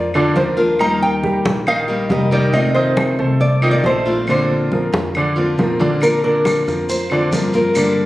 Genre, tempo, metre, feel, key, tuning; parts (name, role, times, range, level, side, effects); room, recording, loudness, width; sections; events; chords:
latin, Cuban son and guajira; 138 BPM; 4/4; straight; Bb major; A4 = 442 Hz
nylon-string guitar; melody; 0.0-8.1 s; Bb4 to Bb5; -18 LUFS; equal
clear baby grand piano; arpeggios; 0.0-8.1 s; D3 to Eb5; -20 LUFS; right 2 dB
upright bass; bass; 0.0-8.1 s; F1 to G2; -23 LUFS; equal
picked old ladder-braced acoustic guitar; accompaniment; 0.1-8.1 s; C3 to G4; -21 LUFS; left 2 dB
claves; percussion; 0.1-8.0 s; -26 LUFS; equal
congas; percussion; 0.1-8.1 s; -23 LUFS; left 1 dB
maracas; percussion; 6.0-8.0 s; -31 LUFS; equal
light reverb; recorded on a phone in the room, studio reverb; -14 LUFS; side -16 dB against mid
0.0-8.1 A section
0.0 Bb; 0.8 Eb; 2.5 F7; 4.3 Bbadd9